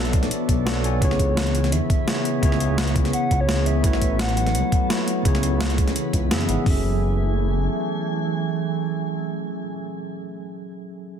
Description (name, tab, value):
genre	liquid drum and bass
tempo	170 BPM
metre	4/4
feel	swing 53% on 16ths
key	F# minor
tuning	A4 = 436 Hz
part	tine electric piano	accompaniment	0.0-11.2 s	C#3 to G#5	-27 LUFS	equal	fast stereo tremolo, ping-pong delay
part	glassy FM pad	sustained chords	0.0-9.6 s	E3 to G#5	-28 LUFS	equal	ensemble chorus, built-in reverb, vintage 12-bit sampler grit
part	dark detuned saw bass	bass	0.0-7.7 s	F#1 to F#2	-23 LUFS	equal	tube saturation
part	breakbeat sampler-style drum kit	drums	0.1-6.8 s	hi-hat, kick drum	-21 LUFS	equal	none
part	breakbeat sampler-style drum kit	drums	0.1-6.6 s	hi-hat, snare drum	-26 LUFS	equal	none
part	hollow clarinet-like synth lead	melody	1.0-4.9 s	C#5 to F#5	-29 LUFS	equal	chorus, dub echo
room	light reverb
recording	dense, heavily limited modern master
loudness	-19 LUFS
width	side -8 dB against mid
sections	0.0-6.7 A section; 6.7-9.5 B section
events	drop 0.0-6.7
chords	0.0 Bm11; 1.0 C#m7; 3.8 A6; 5.3 C#m7; 6.7 F#m9